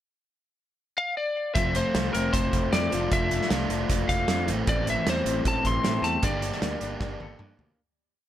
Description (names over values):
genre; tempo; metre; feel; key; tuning
indie rock; 154 BPM; 4/4; straight; unclear; A4 = 444 Hz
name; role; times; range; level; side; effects
lightly driven lead guitar; melody; 1.0-7.4 s; Bb4 to C6; -28 LUFS; left 2 dB; tape echo
overdriven electric guitar; riff; 1.5-7.8 s; E3 to G4; -31 LUFS; right 5 dB; wide subtle chorus, tape echo
electric guitar through a small old amp; riff; 1.6-7.8 s; G2 to A4; -32 LUFS; left 7 dB; none
modern bright picked electric bass; bass; 1.6-7.7 s; F1 to A2; -31 LUFS; equal; none
loose indie drum kit; drums; 1.6-7.7 s; hi-hat, kick drum, snare drum, toms; -29 LUFS; right 1 dB; none
room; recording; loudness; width
light reverb; none; -23 LUFS; side -11 dB against mid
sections
0.0-1.6 pickup bar; 1.6-7.8 pre-chorus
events
fade-out 6.2-7.8; drum fill 7.0-7.8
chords
0.0 N.C.; 1.6 Fmaj7; 2.9 Dmadd9/F; 4.5 Am7; 6.2 Gmadd9